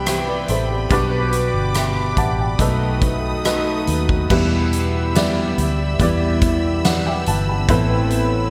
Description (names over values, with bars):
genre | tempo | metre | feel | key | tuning
pop ballad | 71 BPM | 4/4 | straight | E minor | A4 = 440 Hz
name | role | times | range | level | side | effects
dark upright piano | accompaniment | 0.0-8.5 s | A2 to B5 | -24 LUFS | equal | lush chorus
rich studio string section | sustained chords | 0.0-8.5 s | G3 to E6 | -31 LUFS | equal | none
picked steel-string acoustic guitar | arpeggios | 0.0-8.5 s | E2 to G4 | -27 LUFS | equal | subtle chorus
vintage muted fingered electric bass | bass | 0.0-8.5 s | G1 to E2 | -24 LUFS | equal | none
huge arena drum kit | drums | 0.1-8.3 s | crash cymbal, hi-hat, kick drum, rim click, snare drum | -25 LUFS | equal | gated reverb
room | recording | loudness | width
moderate lush hall reverb, RT60 2.7 s | bright 1980s-style digital production | -19 LUFS | mono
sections
0.0-4.3 A section; 4.3-8.5 B section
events
none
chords
0.0 Cmaj7; 0.9 Gmaj7; 2.6 B7; 4.3 Em; 7.7 Amadd9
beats
0.07 | 0.91 1.75 2.60 3.45 | 4.30 5.15 6.00 6.84 | 7.69